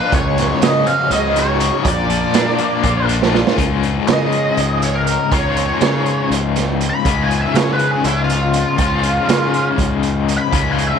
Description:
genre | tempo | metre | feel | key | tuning
psychedelic rock | 242 BPM (eighths) | 7/8 | straight | Db major | A4 = 441 Hz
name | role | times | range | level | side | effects
octave-fuzz lead guitar | melody | 0.0-11.0 s | Fb4 to Cb6 | -19 LUFS | equal | wah, distortion, tape echo
phased string machine | sustained chords | 0.0-3.6 s | F3 to Bb4 | -26 LUFS | right 11 dB | ensemble chorus, phaser
cranked stack guitar | riff | 0.0-11.0 s | Db2 to F4 | -19 LUFS | left 11 dB | overdrive, tremolo
fuzz fingered electric bass | bass | 0.1-10.9 s | Bb1 to Db3 | -20 LUFS | equal | overdrive
raw garage drum kit | drums | 0.1-10.9 s | hi-hat, kick drum, snare drum | -20 LUFS | right 5 dB | none
room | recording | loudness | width
light reverb, small room ambience | 1960s-style stereo with parts hard left and right | -14 LUFS | side -7 dB against mid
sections
0.0-3.6 A section; 3.6-11.0 B section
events
drum fill 3.2-3.6; lead electric guitar solo 3.6-11.0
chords
0.1 Dbsus4; 1.9 Bb; 3.6 Db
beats
| 0.13 0.38 0.62 0.87 1.11 1.36 1.61 | 1.85 2.10 2.35 2.60 2.84 3.09 3.34 | 3.59 3.83 4.08 4.33 4.58 4.82 5.07 | 5.32 5.57 5.82 6.06 6.31 6.56 6.81 | 7.06 7.30 7.55 7.80 8.05 8.30 8.54 | 8.79 9.04 9.29 9.54 9.78 10.03 10.28 | 10.53 10.78

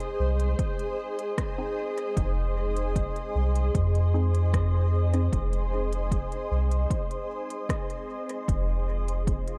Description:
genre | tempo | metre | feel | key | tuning
ambient dub | 76 BPM | 4/4 | straight | F minor | A4 = 437 Hz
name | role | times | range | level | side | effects
granular cloud pad | sustained chords | 0.0-9.6 s | F4 to Ab5 | -35 LUFS | equal | built-in reverb
organic electronic drum kit | drums | 0.0-9.6 s | hi-hat, rim click | -43 LUFS | equal | dub echo
backwards swelling texture | texture | 0.0-8.5 s | C5 | -46 LUFS | equal | none
soft dub sub bass | bass | 0.2-9.4 s | F1 to F2 | -27 LUFS | equal | tube saturation
electronic kick drum | drums | 0.6-9.4 s | none | -32 LUFS | equal | overdrive
filtered dub chord stab | stabs | 1.6-5.3 s | C4 to Ab4 | -41 LUFS | equal | none
room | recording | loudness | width
light reverb | none | -27 LUFS | mono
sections
0.0-8.5 A section; 8.5-9.6 B section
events
none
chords
0.0 Fm7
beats
0.59 1.38 | 2.17 2.96 3.75 4.54 | 5.33 6.12 6.91 7.70 | 8.48 9.28

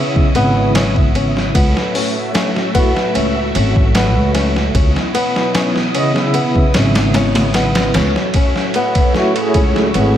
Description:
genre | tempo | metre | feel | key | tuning
trip hop | 75 BPM | 4/4 | straight | C# minor | A4 = 442 Hz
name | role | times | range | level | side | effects
tine electric piano | accompaniment | 0.0-10.2 s | C#3 to E5 | -19 LUFS | right 1 dB | tremolo, tape echo
string machine, cellos | sustained chords | 0.0-10.2 s | A3 to D#6 | -20 LUFS | equal | ensemble chorus
flamenco guitar | arpeggios | 0.0-10.2 s | B3 to C#4 | -20 LUFS | left 2 dB | tape echo
trip hop sampler-style drum kit | drums | 0.2-10.2 s | hi-hat, kick drum, ride cymbal, snare drum | -16 LUFS | equal | none
upright bass | bass | 0.4-10.2 s | G#1 to C#2 | -17 LUFS | equal | none
room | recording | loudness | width
light reverb | none | -12 LUFS | side -10 dB against mid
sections
0.0-10.2 A section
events
none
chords
0.0 C#m9; 1.6 F#m7/C#; 4.8 C#m9; 8.0 F#m7/C#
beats
0.76 | 1.56 2.36 3.16 3.96 | 4.76 5.56 6.36 7.16 | 7.96 8.76 9.56

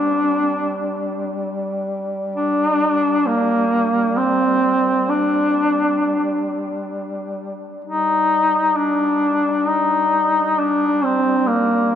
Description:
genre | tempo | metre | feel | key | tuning
caucasian folk, Caucasian lament | free time | none | none | G minor | A4 = 440 Hz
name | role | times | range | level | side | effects
warm duduk | melody | 0.0-12.0 s | Bb3 to Eb4 | -17 LUFS | equal | none
mellow duduk | drone | 0.0-12.0 s | G3 | -26 LUFS | left 1 dB | none
room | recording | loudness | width
wet cathedral reverb, RT60 5.1 s | none | -16 LUFS | side -9 dB against mid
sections
0.0-12.0 A section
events
none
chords
none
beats
free time

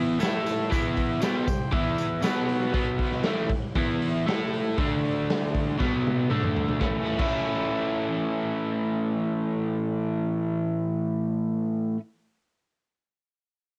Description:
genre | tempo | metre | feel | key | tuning
garage rock duo or trio | 118 BPM | 4/4 | straight | A major | A4 = 441 Hz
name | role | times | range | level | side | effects
combo organ | sustained chords | 0.0-2.7 s | E4 to G5 | -36 LUFS | equal | none
overdriven electric guitar | riff | 0.0-12.0 s | A2 to A4 | -28 LUFS | equal | none
raw garage drum kit | drums | 0.2-7.3 s | crash cymbal, hi-hat, kick drum, snare drum, toms | -31 LUFS | equal | cassette tape
tambourine | percussion | 0.2-2.3 s | none | -49 LUFS | equal | none
room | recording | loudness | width
light reverb | home recording on cassette | -27 LUFS | mono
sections
0.0-6.8 A section; 6.8-10.9 B section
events
drum fill 5.8-6.8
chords
0.2 A5; 0.7 E5; 1.2 C5; 1.7 E5; 2.2 B5; 3.2 A5; 3.7 E5; 4.3 A5; 4.8 D5; 5.8 B5; 6.3 D5; 6.8 A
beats
0.20 | 0.71 1.21 1.72 2.22 | 2.73 3.24 3.75 4.25 | 4.76 5.27 5.78 6.29 | 6.81 7.32 7.83 8.34 | 8.86 9.37 9.88 10.40

